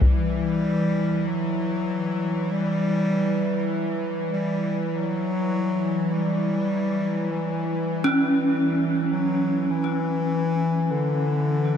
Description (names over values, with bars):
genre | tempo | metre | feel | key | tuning
ambient | 50 BPM | 4/4 | straight | unclear | A4 = 440 Hz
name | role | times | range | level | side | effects
mellow bass clarinet | melody | 0.0-11.8 s | D3 to G3 | -25 LUFS | left 2 dB | ping-pong delay
gamelan-type bronze metallophone | arpeggios | 0.0-11.8 s | E3 to C#4 | -26 LUFS | equal | ping-pong delay
bowed-like drone | drone | 0.0-11.8 s | E3 | -26 LUFS | right 1 dB | built-in reverb
room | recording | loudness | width
wet huge ambient reverb, RT60 8.0 s | in a vast, echoing space | -22 LUFS | side -8 dB against mid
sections
0.0-11.8 A section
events
none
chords
0.0 Emadd9